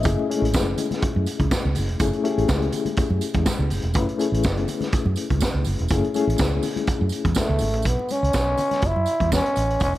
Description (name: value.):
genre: disco.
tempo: 123 BPM.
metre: 4/4.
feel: straight.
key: unclear.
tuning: A4 = 443 Hz.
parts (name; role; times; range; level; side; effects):
mellow reed electric piano; accompaniment; 0.0-7.9 s; G#3 to E5; -25 LUFS; left 5 dB; fast tremolo.
fingered electric bass; bass; 0.0-9.9 s; E1 to F#2; -23 LUFS; right 1 dB; none.
tambourine; percussion; 0.0-9.9 s; none; -38 LUFS; right 10 dB; none.
vintage drum kit; drums; 0.1-10.0 s; hi-hat, kick drum, snare drum; -25 LUFS; right 1 dB; none.
congas; percussion; 0.2-10.0 s; none; -34 LUFS; left 6 dB; none.
growling trombone; melody; 7.4-9.9 s; A3 to E4; -22 LUFS; equal; none.
room: light reverb, small room ambience.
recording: none.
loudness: -20 LUFS.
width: side -15 dB against mid.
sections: 0.0-7.9 A section; 7.9-10.0 B section.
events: none.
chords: 0.0 F#m9; 7.9 Bsus2; 8.8 F#m7.